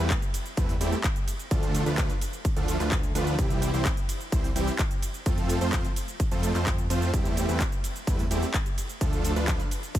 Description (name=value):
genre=EDM, festival progressive house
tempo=128 BPM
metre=4/4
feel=straight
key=unclear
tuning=A4 = 440 Hz
part: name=supersaw chords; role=riff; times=0.0-9.6 s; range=E3 to C5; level=-30 LUFS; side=right 1 dB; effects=sidechain pumping, ping-pong delay
part: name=fat analog bass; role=bass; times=0.0-9.6 s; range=C2 to F2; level=-29 LUFS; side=equal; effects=sidechain pumping
part: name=big-room dance drum kit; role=drums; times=0.0-10.0 s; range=handclaps, hi-hat, ride cymbal, shaker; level=-34 LUFS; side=equal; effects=studio reverb
part: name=electronic kick drum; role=drums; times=0.1-10.0 s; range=none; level=-27 LUFS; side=equal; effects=studio reverb
room=digital ambience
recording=none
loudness=-24 LUFS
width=side -13 dB against mid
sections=0.0-10.0 A section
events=none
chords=0.0 Am7/E; 1.5 Dm; 3.4 C; 5.3 F; 7.1 Am7/E; 9.0 Dm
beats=0.10 0.57 1.04 | 1.51 1.98 2.45 2.92 | 3.38 3.85 4.32 4.79 | 5.26 5.73 6.20 6.67 | 7.13 7.60 8.07 8.54 | 9.01 9.48 9.95